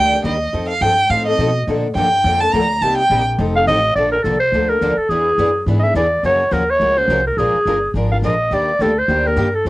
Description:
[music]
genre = acoustic string swing (jazz manouche)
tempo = 210 BPM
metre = 4/4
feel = swing 57% on 8ths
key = Bb major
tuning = A4 = 440 Hz
[part]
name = warm violin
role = second line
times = 0.0-3.2 s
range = Eb5 to Bb5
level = -16 LUFS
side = right 1 dB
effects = cassette tape
[part]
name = picked old ladder-braced acoustic guitar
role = accompaniment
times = 0.0-9.7 s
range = C3 to B4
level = -27 LUFS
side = right 4 dB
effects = cassette tape
[part]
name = picked steel-string acoustic guitar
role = accompaniment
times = 0.0-9.7 s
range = C3 to Bb4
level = -22 LUFS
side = left 4 dB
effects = cassette tape
[part]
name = upright bass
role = bass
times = 0.0-9.7 s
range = F1 to Cb3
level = -21 LUFS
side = equal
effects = none
[part]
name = growling clarinet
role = melody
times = 3.6-9.7 s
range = G#4 to F5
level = -15 LUFS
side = equal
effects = none
[sound]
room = wet booth ambience, RT60 0.2 s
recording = home recording on cassette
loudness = -14 LUFS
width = side -18 dB against mid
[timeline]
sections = 0.0-4.0 A section; 4.0-9.7 B section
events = violin solo 0.0-4.0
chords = 0.0 Ebmaj7; 0.5 F7; 1.7 Bbmaj7; 2.8 Cm7; 3.4 F7; 4.0 Bbmaj7; 5.1 E9; 6.2 Gbmaj7; 7.4 Bb7; 8.5 Ebmaj7

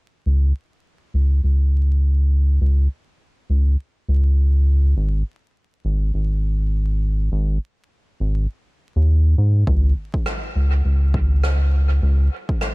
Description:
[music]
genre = ambient dub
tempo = 102 BPM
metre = 4/4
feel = swing 59% on 16ths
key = unclear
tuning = A4 = 440 Hz
[part]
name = round analog bass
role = bass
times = 0.3-12.3 s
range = G#1 to G#2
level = -16 LUFS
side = equal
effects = none
[part]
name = electronic kick drum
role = drums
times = 9.7-12.6 s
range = none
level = -23 LUFS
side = equal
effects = overdrive
[part]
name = rim click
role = drums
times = 10.3-12.7 s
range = none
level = -29 LUFS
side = equal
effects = dub echo
[sound]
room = little or no reverb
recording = vinyl crackle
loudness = -17 LUFS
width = side -25 dB against mid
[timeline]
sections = 0.3-9.7 A section; 9.7-12.7 B section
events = none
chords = none

